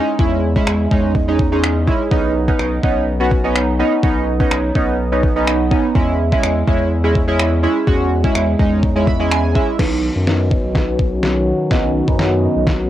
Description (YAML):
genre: dance-pop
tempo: 125 BPM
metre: 4/4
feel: straight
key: B major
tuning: A4 = 440 Hz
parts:
  - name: chorused retro synth keys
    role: accompaniment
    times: 0.0-12.6 s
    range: G#3 to B5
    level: -17 LUFS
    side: right 1 dB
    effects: phaser, sidechain pumping, low-pass filter, cassette tape
  - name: saturated sub bass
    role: bass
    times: 0.2-12.9 s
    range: B1 to F#2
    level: -20 LUFS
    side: equal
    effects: sidechain pumping
  - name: detuned 8-bit digital drum machine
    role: drums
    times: 0.2-12.8 s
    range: crash cymbal, finger snaps, kick drum, snare drum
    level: -18 LUFS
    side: equal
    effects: overdrive, cassette tape
  - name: chorused pulse-width pad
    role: sustained chords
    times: 9.8-12.9 s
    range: D#3 to F#4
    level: -20 LUFS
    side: left 1 dB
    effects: sidechain pumping, low-pass filter, cassette tape
room: light reverb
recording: home recording on cassette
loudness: -14 LUFS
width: side -12 dB against mid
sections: 0.0-9.8 A section; 9.8-12.9 B section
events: synth keys fill 8.8-9.8; build-up 9.8-12.9; drum fill 9.8-12.9; filter sweep 9.8-12.9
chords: 0.0 E6; 2.1 Badd9; 6.0 E6; 9.8 Badd9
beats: | 0.19 0.67 1.15 1.63 | 2.11 2.59 3.07 3.55 | 4.03 4.51 4.99 5.47 | 5.95 6.43 6.91 7.39 | 7.87 8.35 8.83 9.31 | 9.79 10.27 10.75 11.23 | 11.71 12.19 12.67